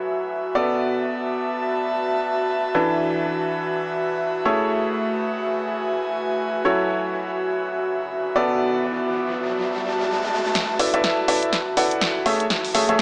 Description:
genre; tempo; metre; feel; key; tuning
piano house; 123 BPM; 4/4; swing 59% on 16ths; unclear; A4 = 443 Hz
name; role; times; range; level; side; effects
clear upright piano; riff; 0.0-13.0 s; E3 to F#5; -26 LUFS; equal; low-pass filter, digital delay
airy breathy pad; texture; 0.0-13.0 s; A3 to A5; -26 LUFS; equal; chorus
riser; sound effects; 7.9-13.0 s; none; -34 LUFS; equal; none
punchy analog drum machine; drums; 10.6-13.0 s; hi-hat, snare drum; -26 LUFS; equal; low-pass filter on snare, low-pass filter on hats
room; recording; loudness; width
moderate lush hall reverb, RT60 1.7 s; small speaker sound; -23 LUFS; mono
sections
0.0-10.6 A section; 10.6-13.0 B section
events
riser 7.9-10.6, 10.6-13.0; build-up 10.6-13.0; drum fill 10.6-13.0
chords
0.0 F#m7; 0.6 Bm7; 2.7 E7sus4; 4.5 Amaj7; 6.6 F#m7; 8.4 Bm7; 10.6 E7sus4; 12.3 Amaj7

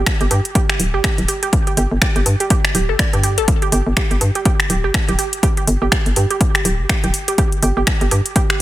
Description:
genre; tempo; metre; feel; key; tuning
minimal techno; 123 BPM; 4/4; swing 58% on 16ths; unclear; A4 = 440 Hz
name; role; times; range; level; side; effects
resonant blip pluck; riff; 0.0-8.5 s; G4 to D5; -22 LUFS; right 4 dB; chorus, sidechain pumping, digital delay
hollow knocking FM bass; bass; 0.0-8.2 s; D1 to G2; -17 LUFS; equal; sidechain pumping
electronic kick drum; drums; 0.1-8.5 s; none; -18 LUFS; equal; overdrive
house drum kit; drums; 0.1-8.6 s; finger snaps, hi-hat; -20 LUFS; equal; overdrive, soft clipping on snare
room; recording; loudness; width
digital ambience; dense, heavily limited modern master; -14 LUFS; side -15 dB against mid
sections
0.0-8.6 A section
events
none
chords
none

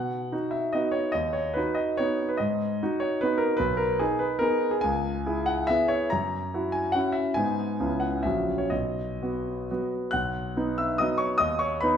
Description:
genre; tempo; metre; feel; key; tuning
classical, romantic triple-time dance for piano with dotted rhythms; 118-157 BPM; 3/4; rubato; B major; A4 = 441 Hz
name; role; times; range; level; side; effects
clear concert grand piano; solo; 0.0-12.0 s; A#1 to F#6; -24 LUFS; equal; none
room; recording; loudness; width
moderate recital hall reverb, RT60 1.5 s; minimal, uncompressed stereo recording; -24 LUFS; side -8 dB against mid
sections
0.0-10.1 A section; 10.1-12.0 A section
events
none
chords
0.0 B; 1.2 B/D#; 2.4 G#m7; 3.6 G#m/B; 4.8 C#m7; 6.1 F#7; 7.4 G#m; 7.8 C#m7; 8.3 F#7/A#; 8.7 B; 11.4 B/D#

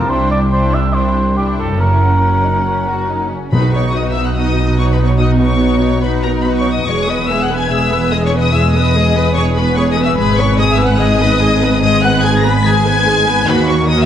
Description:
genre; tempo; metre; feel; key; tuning
cinematic; 144 BPM; 4/4; straight; B major from 3.5 s; A4 = 443 Hz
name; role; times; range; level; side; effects
rich symphonic violin section; melody; 0.0-14.1 s; Gb5 to B6; -20 LUFS; left 3 dB; none
mellow cor anglais; second line; 0.0-3.3 s; G4 to E5; -17 LUFS; equal; none
warm symphonic violin section; second line; 0.0-14.1 s; Db4 to B5; -22 LUFS; left 3 dB; none
rich symphonic viola section; accompaniment; 0.0-14.1 s; G#3 to B4; -19 LUFS; right 1 dB; none
concert harp; arpeggios; 0.0-14.1 s; E2 to A#5; -21 LUFS; left 7 dB; none
dark symphonic cello section; bass; 0.0-14.1 s; C2 to D#3; -18 LUFS; right 2 dB; none
rich symphonic double bass section; bass; 0.0-14.1 s; E1 to D#2; -18 LUFS; right 2 dB; none
timpani; percussion; 3.5-4.1 s; B2; -18 LUFS; equal; none
room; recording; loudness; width
moderate scoring stage reverb, RT60 1.6 s; nothing above 11.0 kHz; -11 LUFS; side -10 dB against mid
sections
0.0-3.5 A section; 3.5-14.1 B section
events
none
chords
0.1 Cadd9; 1.8 Gb7; 3.5 B; 6.9 E; 10.2 G#m; 13.5 D#m

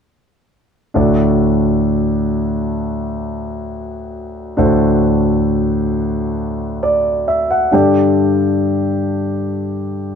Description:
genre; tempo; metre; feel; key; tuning
pop; 67 BPM; 4/4; straight; D mixolydian; A4 = 440 Hz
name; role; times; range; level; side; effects
warm concert grand piano; accompaniment; 0.9-10.2 s; D2 to G5; -14 LUFS; equal; none
room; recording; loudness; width
light reverb; dark, warm production; -14 LUFS; side -6 dB against mid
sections
1.0-10.2 A section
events
grand piano fill 6.4-8.2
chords
1.0 D; 7.7 Gsus2

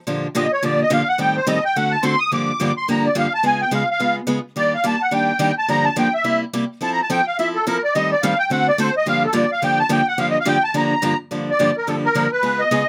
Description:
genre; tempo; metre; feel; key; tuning
jazz; 214 BPM; 4/4; swing 59% on 8ths; G minor; A4 = 440 Hz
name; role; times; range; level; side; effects
picked steel-string acoustic guitar; accompaniment; 0.1-12.8 s; G2 to A4; -23 LUFS; equal; none
musette accordion; melody; 0.4-12.9 s; A4 to Eb6; -20 LUFS; equal; none
room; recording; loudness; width
little or no reverb; close, detailed microphones; -19 LUFS; mono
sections
0.0-2.3 A section; 2.3-11.3 A section; 11.3-12.9 B section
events
accordion solo 0.0-11.3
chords
0.1 Bb6; 1.2 Am7b5; 1.8 D7; 2.3 Gm7; 3.4 C#7; 4.6 Ebmaj7; 5.7 Gm7; 6.2 C7; 6.8 Fmaj7; 7.9 Am7b5; 8.5 D7; 9.1 Gm7

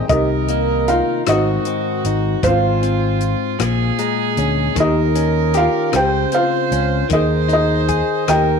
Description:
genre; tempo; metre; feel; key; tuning
acoustic folk-pop ballad; 51 BPM (dotted quarters); 6/8; straight; Ab major; A4 = 440 Hz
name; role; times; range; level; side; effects
direct-recorded clean electric guitar; accompaniment; 0.0-8.6 s; Ab2 to Ab4; -22 LUFS; left 11 dB; none
concert harp; arpeggios; 0.0-7.1 s; G4 to Bb5; -28 LUFS; right 13 dB; tape echo
felt-muted upright piano; melody; 0.1-8.6 s; C4 to G5; -19 LUFS; equal; none
warm violin; second line; 0.1-8.6 s; F4 to C5; -22 LUFS; right 12 dB; none
fingered electric bass; bass; 0.1-8.6 s; Ab1 to Eb2; -20 LUFS; right 1 dB; none
compact cocktail drum kit; drums; 0.1-8.5 s; hi-hat, kick drum, rim click; -25 LUFS; left 5 dB; none
room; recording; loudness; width
light reverb, small room ambience; 1960s-style stereo with parts hard left and right; -15 LUFS; side -6 dB against mid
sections
0.1-8.6 A section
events
none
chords
0.1 Cm7; 1.3 Ab7; 2.4 Ab6; 3.6 Bbm7; 4.8 Eb7; 5.9 Dbmaj7; 7.1 Ebsus4

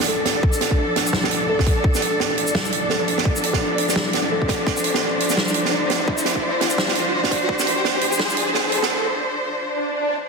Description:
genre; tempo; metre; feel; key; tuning
half-time drum and bass; 170 BPM; 4/4; swing 59% on 16ths, half-time; D minor; A4 = 440 Hz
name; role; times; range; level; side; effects
bright symphonic cello section; sustained chords; 0.0-10.3 s; F3 to C5; -24 LUFS; left 1 dB; sidechain pumping
big rock drum kit; drums; 0.0-8.9 s; hi-hat, shaker, snare drum; -22 LUFS; right 3 dB; none
riser and swell; sound effects; 0.9-10.3 s; none; -27 LUFS; equal; none
flickering grainy texture; texture; 0.0-8.9 s; D5; -32 LUFS; right 3 dB; built-in reverb
kalimba; arpeggios; 0.1-8.7 s; D4 to D5; -27 LUFS; equal; low-pass filter, dub echo
electronic kick drum; drums; 0.4-7.6 s; none; -21 LUFS; equal; none
room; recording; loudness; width
moderate lush hall reverb, RT60 1.9 s, small room reverb; dense, heavily limited modern master, high-pass filter; -18 LUFS; side -4 dB against mid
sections
0.0-10.3 A section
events
build-up 0.0-10.3; riser 0.9-8.9; break 8.9-10.3; swell 9.7-10.3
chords
0.0 Dm

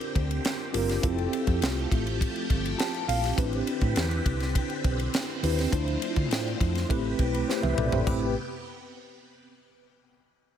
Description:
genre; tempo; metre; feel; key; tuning
polished 1980s jazz-funk pop; 102 BPM; 4/4; straight; A minor; A4 = 440 Hz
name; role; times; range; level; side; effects
mellow tine electric piano; accompaniment; 0.0-8.3 s; A3 to A5; -30 LUFS; equal; medium stereo tremolo, analog chorus
phased string machine; sustained chords; 0.0-8.3 s; C3 to B4; -35 LUFS; right 1 dB; ensemble chorus, phaser
tight funk drum kit; drums; 0.0-8.2 s; hi-hat, kick drum, ride cymbal, snare drum, splash cymbal, toms; -29 LUFS; equal; gated reverb
hollow-body short-scale fingered electric bass; bass; 0.2-8.3 s; F1 to D3; -29 LUFS; equal; none
room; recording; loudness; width
small room ambience; none; -25 LUFS; side -9 dB against mid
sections
0.0-8.1 A section; 8.1-10.4 B section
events
tine electric piano fill 2.5-3.4; drum fill 7.5-8.1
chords
0.0 Bb69; 1.0 Fmaj9; 3.4 Am11; 5.7 Dm7; 6.9 Am9

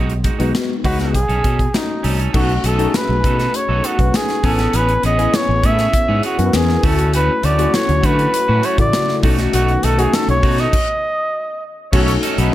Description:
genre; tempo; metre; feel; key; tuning
polished 1980s jazz-funk pop; 100 BPM; 4/4; straight; unclear; A4 = 442 Hz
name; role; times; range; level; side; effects
electric guitar at the edge of break-up; riff; 0.0-12.5 s; G#3 to A4; -26 LUFS; right 6 dB; wide subtle chorus
fretless electric bass; bass; 0.0-12.5 s; A1 to D3; -18 LUFS; equal; lush chorus
modern studio drum kit; drums; 0.1-12.5 s; crash cymbal, hi-hat, kick drum, snare drum; -20 LUFS; equal; gated reverb
tine electric piano; accompaniment; 0.4-12.5 s; C#3 to G#5; -21 LUFS; left 4 dB; ensemble chorus
mellow horn section; second line; 0.8-1.2, 11.9-12.5 s; B3 to C#5; -25 LUFS; left 2 dB; none
warm flugelhorn; melody; 0.9-11.6 s; D#4 to E5; -19 LUFS; equal; none
lush unison pad; sustained chords; 7.1-12.5 s; C#3 to F#4; -30 LUFS; equal; none
room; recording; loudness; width
small room ambience; none; -14 LUFS; side -14 dB against mid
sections
0.0-2.3 A section; 2.3-11.9 B section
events
stop 10.7-11.9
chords
0.0 B69; 1.1 B9; 2.3 B7; 4.4 Amaj9; 6.8 Dmaj7; 9.2 B7

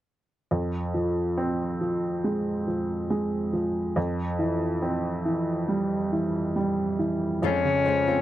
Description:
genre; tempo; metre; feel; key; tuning
pop; 69 BPM; 4/4; straight; F minor; A4 = 440 Hz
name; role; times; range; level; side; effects
warm upright piano; accompaniment; 0.5-8.2 s; F2 to C5; -25 LUFS; right 1 dB; none
nylon-string guitar; arpeggios; 7.4-8.2 s; F2 to F4; -30 LUFS; left 13 dB; none
bright alto saxophone; melody; 7.5-8.2 s; Db4; -22 LUFS; left 4 dB; slapback echo
room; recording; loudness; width
small room ambience; dry, close 1970s-style studio recording; -24 LUFS; side -13 dB against mid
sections
0.5-7.4 A section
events
none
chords
0.5 Fm; 4.0 C/F; 7.4 Dbmaj7/F

